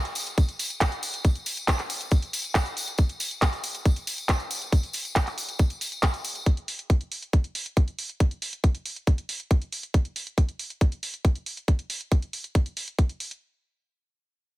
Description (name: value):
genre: trance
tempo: 138 BPM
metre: 4/4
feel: straight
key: none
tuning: none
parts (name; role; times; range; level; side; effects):
- tambourine; percussion; 0.0-6.4 s; none; -34 LUFS; left 2 dB; none
- drum and bass drum kit; drums; 0.1-13.4 s; handclaps, hi-hat; -30 LUFS; right 1 dB; none
- electronic kick drum; drums; 0.4-13.1 s; none; -20 LUFS; equal; none
room: digital ambience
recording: none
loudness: -24 LUFS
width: side -18 dB against mid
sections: 0.0-13.4 A section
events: none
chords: none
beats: 0.38 0.81 | 1.25 1.68 2.12 2.55 | 2.98 3.42 3.85 4.29 | 4.72 5.16 5.59 6.03 | 6.46 6.90 7.33 7.77 | 8.20 8.64 9.07 9.51 | 9.94 10.38 10.81 11.25 | 11.68 12.12 12.55 12.98